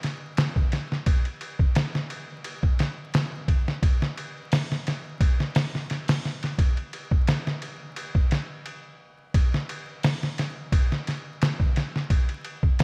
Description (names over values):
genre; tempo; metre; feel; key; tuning
trip hop; 87 BPM; 4/4; swing 54% on 16ths; none; none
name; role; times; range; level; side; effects
trip hop sampler-style drum kit; drums; 0.0-12.8 s; hi-hat, kick drum, ride cymbal, snare drum; -26 LUFS; equal; none
room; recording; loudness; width
light reverb; vinyl crackle; -26 LUFS; mono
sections
0.0-12.8 A section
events
none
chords
none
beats
0.38 | 1.07 1.76 2.45 3.13 | 3.83 4.51 5.20 5.89 | 6.58 7.27 7.96 8.65 | 9.34 10.03 10.72 11.41 | 12.10 12.79